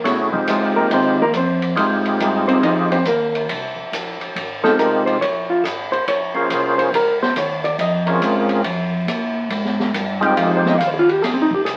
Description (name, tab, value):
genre	soul jazz organ trio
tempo	140 BPM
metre	4/4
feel	swing 66% on 8ths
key	F minor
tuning	A4 = 441 Hz
part	percussive tonewheel organ	melody	0.0-10.8 s	Ab3 to C5	-20 LUFS	equal	slow rotary speaker, overdrive, chorus vibrato
part	hollow-body jazz guitar	accompaniment	0.0-11.8 s	Ab3 to G5	-21 LUFS	equal	none
part	mellow tonewheel organ	bass	0.0-11.8 s	Ab1 to Bb2	-28 LUFS	equal	chorus vibrato, slow rotary speaker
part	open jazz drum kit	drums	0.0-11.8 s	hi-hat, kick drum, ride cymbal, snare drum	-26 LUFS	equal	none
room	wet studio reverb, RT60 0.6 s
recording	very old 78 rpm record, vinyl crackle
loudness	-19 LUFS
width	mono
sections	0.0-11.8 A section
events	hollow-body jazz guitar solo 0.0-11.8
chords	0.0 Fm7; 5.2 Bbm7; 10.4 Fm7